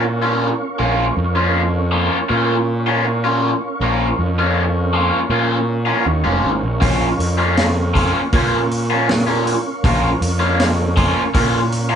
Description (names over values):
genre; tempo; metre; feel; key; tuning
psychedelic rock; 80 BPM; 4/4; straight; Bb minor; A4 = 440 Hz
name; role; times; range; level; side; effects
mellow tonewheel organ; sustained chords; 0.0-12.0 s; Db4 to Db6; -24 LUFS; right 2 dB; slow rotary speaker, chorus vibrato
raw garage guitar; riff; 0.0-12.0 s; F3 to F4; -18 LUFS; left 1 dB; overdrive, phaser
fuzz picked electric bass; bass; 0.0-12.0 s; F1 to Bb2; -19 LUFS; equal; overdrive
vintage drum kit; drums; 6.8-11.9 s; hi-hat, kick drum, snare drum; -20 LUFS; equal; none
room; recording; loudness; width
moderate studio reverb, RT60 0.6 s; band playing live in one room, nothing above 11.0 kHz; -15 LUFS; side -8 dB against mid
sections
0.0-12.0 A section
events
none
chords
0.0 Bbm